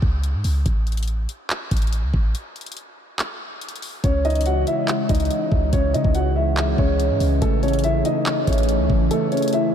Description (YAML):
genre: hip hop, trap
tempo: 142 BPM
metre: 4/4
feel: half-time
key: C# minor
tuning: A4 = 440 Hz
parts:
  - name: clean 808-style bass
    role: bass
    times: 0.0-9.1 s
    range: A1 to C#3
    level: -21 LUFS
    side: equal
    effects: none
  - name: trap drum kit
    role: drums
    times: 0.0-9.6 s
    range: handclaps, hi-hat, kick drum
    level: -25 LUFS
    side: equal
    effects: none
  - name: dark grand piano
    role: melody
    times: 4.0-9.7 s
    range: A3 to F#5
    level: -22 LUFS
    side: equal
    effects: tape echo
  - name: warbly tape-like pad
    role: sustained chords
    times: 4.4-9.7 s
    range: C#3 to A3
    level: -24 LUFS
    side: equal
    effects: chorus, built-in reverb
room: moderate huge ambient reverb, RT60 8.1 s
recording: dreamy mix soaked in reverb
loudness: -18 LUFS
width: side -8 dB against mid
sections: 0.0-9.7 A section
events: break 0.0-4.0; kick muted 9.1-9.7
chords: 0.0 C#5; 0.7 N.C.; 4.0 C#m; 7.4 A